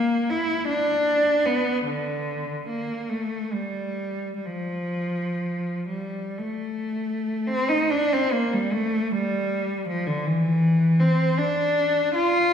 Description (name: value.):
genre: classical, free, expressive piece for unaccompanied cello.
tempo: 33-54 BPM (dotted quarters).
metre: 6/8.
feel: rubato.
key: unclear.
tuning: A4 = 439 Hz.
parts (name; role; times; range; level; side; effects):
rich cello; solo; 0.0-12.5 s; D3 to F4; -22 LUFS; equal; none.
room: wet concert hall reverb, RT60 2.0 s.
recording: heard from further back in the room.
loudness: -22 LUFS.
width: side -8 dB against mid.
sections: 0.0-7.5 A section; 7.5-12.5 B section.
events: none.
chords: none.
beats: 0.69 | 1.85 3.10 | 4.46 5.89 | 7.48 8.69 | 9.87 11.00 | 12.14.